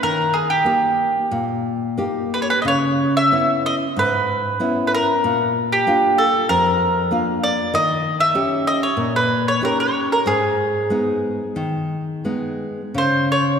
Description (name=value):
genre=fado-style ballad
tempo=84-98 BPM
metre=4/4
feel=rubato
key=G# harmonic minor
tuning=A4 = 442 Hz
part: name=mandolin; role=melody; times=0.0-13.6 s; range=G4 to E5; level=-18 LUFS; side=equal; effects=none
part: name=nylon-string guitar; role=accompaniment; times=0.0-13.6 s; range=E#2 to G4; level=-22 LUFS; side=left 1 dB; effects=none
room=wet church reverb, RT60 2.7 s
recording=recorded in a church or concert hall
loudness=-17 LUFS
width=side -7 dB against mid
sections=0.0-12.9 A section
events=none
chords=0.0 D#; 2.6 C#m7; 5.2 A#; 7.7 D#7; 10.3 G#m; 12.9 N.C.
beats=| 0.03 0.66 1.31 1.98 | 2.65 3.32 3.97 4.61 | 5.25 5.87 6.49 7.12 | 7.74 8.35 8.98 9.62 | 10.26 10.91 11.56 12.25 | 12.95